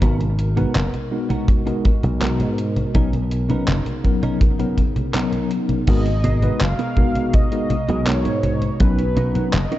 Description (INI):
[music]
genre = vaporwave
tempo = 82 BPM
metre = 4/4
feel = straight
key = unclear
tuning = A4 = 440 Hz
[part]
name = mellow tine electric piano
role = accompaniment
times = 0.0-9.6 s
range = F#3 to B4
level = -24 LUFS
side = left 1 dB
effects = medium stereo tremolo, lush chorus, tape echo
[part]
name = warbly tape-like pad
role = sustained chords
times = 0.0-9.8 s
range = B2 to A#5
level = -31 LUFS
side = left 1 dB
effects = chorus, built-in reverb
[part]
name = clean electric guitar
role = riff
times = 0.0-9.8 s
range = B3 to A#4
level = -29 LUFS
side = right 3 dB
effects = analog chorus, tape echo
[part]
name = slap bass with an envelope filter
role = bass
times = 0.0-9.6 s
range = F#1 to G#2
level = -21 LUFS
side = equal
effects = none
[part]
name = detuned 8-bit digital drum machine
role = drums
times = 0.0-9.8 s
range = congas, crash cymbal, handclaps, hi-hat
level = -25 LUFS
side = equal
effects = overdrive, vintage 12-bit sampler grit
[part]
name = kick drum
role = drums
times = 0.0-8.9 s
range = none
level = -18 LUFS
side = equal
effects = vintage 12-bit sampler grit
[part]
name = warm velvety synth lead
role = melody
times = 5.9-9.8 s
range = B4 to E#5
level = -27 LUFS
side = equal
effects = chorus, tape echo
[sound]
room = little or no reverb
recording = dark, warm production, nothing above 7.9 kHz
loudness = -17 LUFS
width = side -14 dB against mid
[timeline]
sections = 0.0-5.9 A section; 5.9-9.8 B section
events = none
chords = 0.0 G#m9; 2.9 Bmaj9; 5.9 G#m9; 8.8 Bmaj9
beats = | 0.02 0.75 1.49 2.22 | 2.95 3.68 4.41 5.14 | 5.88 6.61 7.34 8.07 | 8.80 9.53